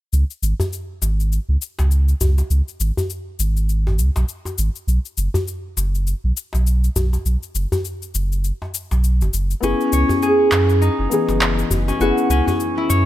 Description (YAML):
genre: organic downtempo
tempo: 101 BPM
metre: 4/4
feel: swing 58% on 16ths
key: C# minor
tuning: A4 = 439 Hz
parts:
  - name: warm sub bass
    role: bass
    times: 0.1-13.1 s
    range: F#1 to F#2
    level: -17 LUFS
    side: equal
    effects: none
  - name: electronic cabasa and handclaps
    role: drums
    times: 0.1-13.0 s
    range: none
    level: -25 LUFS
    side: left 3 dB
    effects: overdrive
  - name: djembe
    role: percussion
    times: 0.6-12.6 s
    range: none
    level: -25 LUFS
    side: left 1 dB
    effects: none
  - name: felt-muted upright piano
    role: accompaniment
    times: 9.6-13.1 s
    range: E3 to G#4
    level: -21 LUFS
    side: left 4 dB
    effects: tape echo
  - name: concert harp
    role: arpeggios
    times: 9.6-13.1 s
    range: C#4 to C#5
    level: -18 LUFS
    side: equal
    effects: tape echo
room: little or no reverb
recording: none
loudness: -17 LUFS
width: side -14 dB against mid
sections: 0.1-13.1 A section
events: filter sweep on sub bass 0.1-13.1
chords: 0.1 C#5; 4.9 B5; 9.6 Emaj7